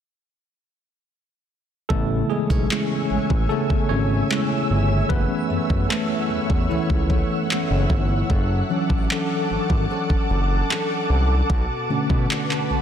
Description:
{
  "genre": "contemporary R&B",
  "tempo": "75 BPM",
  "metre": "4/4",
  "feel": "straight",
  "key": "unclear",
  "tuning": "A4 = 440 Hz",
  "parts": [
    { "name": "tine electric piano", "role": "accompaniment", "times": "1.9-12.8 s", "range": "C#3 to C#5", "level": "-24 LUFS", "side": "left 1 dB", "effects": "medium stereo tremolo" },
    { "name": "ethereal airy pad", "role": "sustained chords", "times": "2.3-12.8 s", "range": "A4 to E6", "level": "-28 LUFS", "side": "left 1 dB", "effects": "ensemble chorus, built-in reverb" },
    { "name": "fingerpicked steel-string acoustic guitar", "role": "arpeggios", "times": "1.9-12.8 s", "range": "F#2 to A4", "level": "-30 LUFS", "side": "right 2 dB", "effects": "tape echo" },
    { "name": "smooth synth bass", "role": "bass", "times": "1.9-12.8 s", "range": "F#1 to B2", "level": "-22 LUFS", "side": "equal", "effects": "none" },
    { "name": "smooth R&B drum kit", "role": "drums", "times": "1.9-12.7 s", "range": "handclaps, kick drum", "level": "-24 LUFS", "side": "equal", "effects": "overdrive" }
  ],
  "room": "little or no reverb",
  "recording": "dense, heavily limited modern master",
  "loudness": "-19 LUFS",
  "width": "side -9 dB against mid",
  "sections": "1.9-12.8 A section",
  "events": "tine electric piano solo 1.9-12.8",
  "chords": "1.9 Amaj7; 5.1 F#m7; 8.3 Dmaj7/F#; 11.5 Bm7",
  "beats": "| 1.90 2.70 3.50 4.30 | 5.10 5.90 6.70 7.50 | 8.30 9.10 9.90 10.70 | 11.50 12.30"
}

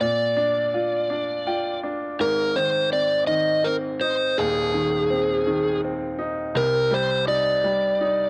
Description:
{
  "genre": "pop",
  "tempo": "55 BPM (dotted quarters)",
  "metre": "6/8",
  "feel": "straight",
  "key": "unclear",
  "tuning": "A4 = 440 Hz",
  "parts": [
    { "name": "overdriven slide guitar", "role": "melody", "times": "0.0-8.3 s", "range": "Ab4 to Eb5", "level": "-24 LUFS", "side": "equal", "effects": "cassette tape" },
    { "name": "bright baby grand piano", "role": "accompaniment", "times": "0.0-8.3 s", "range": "Eb1 to G5", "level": "-29 LUFS", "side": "equal", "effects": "cassette tape" }
  ],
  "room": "light reverb, small room ambience",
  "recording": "home recording on cassette",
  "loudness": "-23 LUFS",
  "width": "mono",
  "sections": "0.0-2.2 A section; 2.2-8.3 B section",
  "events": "grand piano fill 1.1-2.2",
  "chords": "0.0 Bb; 2.2 Ab; 6.6 Cm",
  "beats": "| 0.02 1.11 | 2.20 3.29 | 4.38 5.47 | 6.57 7.65"
}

